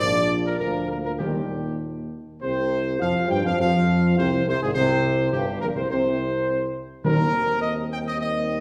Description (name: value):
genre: classical, ceremonial fanfare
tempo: 103 BPM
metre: 4/4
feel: straight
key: unclear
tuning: A4 = 441 Hz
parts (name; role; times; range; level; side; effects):
- clear trumpet section; melody; 0.0-8.6 s; G4 to G5; -27 LUFS; equal; none
- dark French horn section; sustained chords; 0.0-8.6 s; G3 to G4; -34 LUFS; equal; none
- dark trombone section; sustained chords; 0.0-8.6 s; G2 to G3; -31 LUFS; equal; none
- mellow tuba; bass; 0.0-8.6 s; G1 to G2; -28 LUFS; equal; none
- timpani; percussion; 1.2-2.1, 7.0-7.9 s; Eb3; -29 LUFS; equal; none
room: wet recital hall reverb, RT60 1.4 s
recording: recorded in a church or concert hall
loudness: -23 LUFS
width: mono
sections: 0.0-2.4 A section; 2.4-8.6 B section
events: none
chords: 0.0 Bb; 1.2 Eb; 2.4 Fsus2; 7.0 Eb6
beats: | 0.00 0.59 1.20 1.81 | 2.42 3.01 3.59 4.17 | 4.75 5.33 5.90 6.47 | 7.04 7.62 8.19